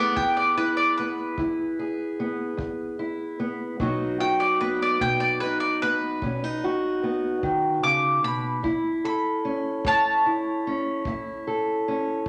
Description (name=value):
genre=acoustic country blues, solo or duo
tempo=50 BPM (dotted quarters)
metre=12/8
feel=straight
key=E major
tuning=A4 = 440 Hz
part: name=mandolin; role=melody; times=0.0-11.4 s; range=B4 to D6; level=-26 LUFS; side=equal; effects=none
part: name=fingerpicked steel-string acoustic guitar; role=accompaniment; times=0.0-12.3 s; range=E2 to A4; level=-28 LUFS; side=equal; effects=none
part: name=kick drum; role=drums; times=0.2-12.3 s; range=none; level=-39 LUFS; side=equal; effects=none
room=wet large studio reverb, RT60 1.3 s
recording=none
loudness=-25 LUFS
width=mono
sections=0.0-12.3 A section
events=none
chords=0.0 E; 3.8 B; 8.6 A